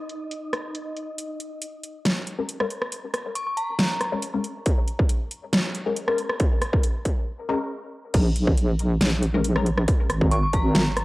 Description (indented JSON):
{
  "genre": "deep dubstep",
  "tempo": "138 BPM",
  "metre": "4/4",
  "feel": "half-time",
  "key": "Bb minor",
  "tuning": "A4 = 439 Hz",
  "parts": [
    { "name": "wind-like tuned noise texture", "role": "texture", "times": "0.0-1.2 s", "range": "Eb4 to Eb5", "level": "-36 LUFS", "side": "equal", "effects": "built-in reverb, cassette tape" },
    { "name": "dubstep drum kit", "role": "drums", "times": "0.1-11.0 s", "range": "crash cymbal, hi-hat, rim click, snare drum", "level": "-26 LUFS", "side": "equal", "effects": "low-pass filter on hats, studio reverb, low-pass filter on snare, low-pass filter on cymbals" },
    { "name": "filtered dub chord stab", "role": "stabs", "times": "2.4-9.7 s", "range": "Ab3 to Bb4", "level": "-29 LUFS", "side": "left 4 dB", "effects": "phaser, ensemble chorus, cassette tape, dub echo" },
    { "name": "dark detuned synth bell", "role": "melody", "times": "3.4-4.2, 10.3-11.0 s", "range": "Bb5 to Db6", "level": "-28 LUFS", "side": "equal", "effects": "chorus, cassette tape, dub echo" },
    { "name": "electronic kick drum", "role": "drums", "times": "4.7-10.6 s", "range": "none", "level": "-21 LUFS", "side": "equal", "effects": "distortion, studio reverb" },
    { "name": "deep soft wobble bass", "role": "bass", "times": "8.1-11.0 s", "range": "Ab1 to Bb1", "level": "-22 LUFS", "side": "equal", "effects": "chorus, tube saturation" }
  ],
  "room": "moderate spring reverb, RT60 1.6 s, digital ambience",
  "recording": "home recording on cassette",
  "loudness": "-22 LUFS",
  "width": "side -20 dB against mid",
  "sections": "0.0-1.2 A section; 1.2-8.1 B section; 8.1-11.0 C section",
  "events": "build-up 1.2-8.1; filter sweep on synth stab 1.2-8.1; break 7.3-8.1; drop 8.1-11.0",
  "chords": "0.0 N.C.; 1.2 Bbm7; 8.1 Bb7(no3)"
}